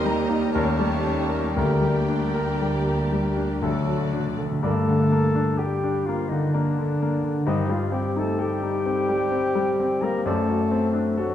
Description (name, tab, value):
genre	classical, romantic movement for piano and orchestra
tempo	56-66 BPM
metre	3/4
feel	rubato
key	G minor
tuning	A4 = 440 Hz
part	clear concert grand piano	melody	0.0-11.3 s	D2 to Bb4	-24 LUFS	left 2 dB	none
part	warm studio violin section	melody	0.0-3.6 s	G5 to Bb5	-40 LUFS	right 1 dB	none
part	clear symphonic violin section	second line	0.0-4.4 s	G4 to Eb5	-36 LUFS	left 2 dB	none
part	dark cor anglais	second line	0.0-10.6 s	A4 to Eb5	-35 LUFS	right 3 dB	none
part	mellow clarinet	second line	0.0-11.3 s	D4 to Bb4	-29 LUFS	equal	none
part	mellow concert flute	second line	0.0-11.3 s	D5 to Bb5	-34 LUFS	left 1 dB	none
part	rich symphonic viola section	accompaniment	0.0-4.4 s	A3 to G4	-31 LUFS	right 2 dB	none
part	warm bassoon	accompaniment	0.0-10.6 s	F#3 to C4	-35 LUFS	right 3 dB	none
part	rich symphonic cello section	bass	0.0-3.6 s	G3 to Bb3	-33 LUFS	right 2 dB	none
part	rich symphonic double bass section	bass	0.0-4.4 s	D2 to Eb2	-32 LUFS	right 3 dB	none
part	warm trumpet	stabs	0.5-4.0 s	A4 to Bb4	-32 LUFS	right 2 dB	none
part	warm French horn section	sustained chords	0.6-11.3 s	D3 to D4	-28 LUFS	left 2 dB	none
part	timpani	percussion	3.6-4.6 s	D3	-31 LUFS	right 1 dB	none
room	wet recital hall reverb, RT60 1.5 s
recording	dark, warm production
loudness	-21 LUFS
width	side -10 dB against mid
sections	0.0-4.6 A section; 4.6-11.3 B section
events	timpani fill 3.6-4.6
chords	0.0 Eb; 0.5 Eb7; 1.6 Gm/D; 3.6 D; 4.6 Gm; 7.5 Am7b5/G; 10.3 D7/F#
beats	0.53 | 1.55 2.61 3.62 | 4.63 5.58 6.53 | 7.46 8.39 9.32 | 10.25 11.18